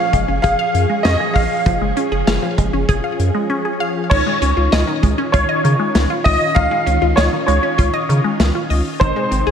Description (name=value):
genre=synth-pop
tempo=98 BPM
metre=4/4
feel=straight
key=unclear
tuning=A4 = 440 Hz
part: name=warm concert grand piano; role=melody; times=0.0-9.5 s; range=B#4 to E#5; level=-19 LUFS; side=equal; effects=ensemble chorus, ping-pong delay
part: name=ensemble organ-string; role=sustained chords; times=0.0-9.5 s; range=B#2 to G#4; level=-23 LUFS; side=equal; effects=ensemble chorus
part: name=resonant blip pluck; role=arpeggios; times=0.0-9.5 s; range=D#3 to E#5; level=-22 LUFS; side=left 1 dB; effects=phaser, ping-pong delay
part: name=round analog bass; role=bass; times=0.1-9.5 s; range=F#1 to C#3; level=-18 LUFS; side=equal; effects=none
part: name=modern studio drum kit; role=drums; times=0.1-9.5 s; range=crash cymbal, hi-hat, kick drum, snare drum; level=-20 LUFS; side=equal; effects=none
room=moderate plate reverb, RT60 2.5 s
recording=dreamy mix soaked in reverb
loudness=-14 LUFS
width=side -8 dB against mid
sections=0.0-4.1 A section; 4.1-9.5 B section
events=none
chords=0.0 C#/F#; 4.1 C#add9; 9.0 G#